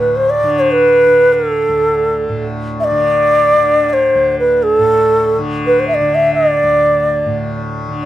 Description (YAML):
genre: indian classical, Hindustani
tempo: free time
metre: none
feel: none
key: unclear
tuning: A4 = 441 Hz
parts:
  - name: mellow bansuri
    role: melody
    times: 0.0-7.6 s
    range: A4 to E5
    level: -11 LUFS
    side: equal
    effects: none
  - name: tanpura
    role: drone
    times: 0.0-8.1 s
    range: D2 to D3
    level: -20 LUFS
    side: equal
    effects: none
room: light reverb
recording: none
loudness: -10 LUFS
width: side -13 dB against mid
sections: 0.0-8.1 A section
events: none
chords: none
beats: free time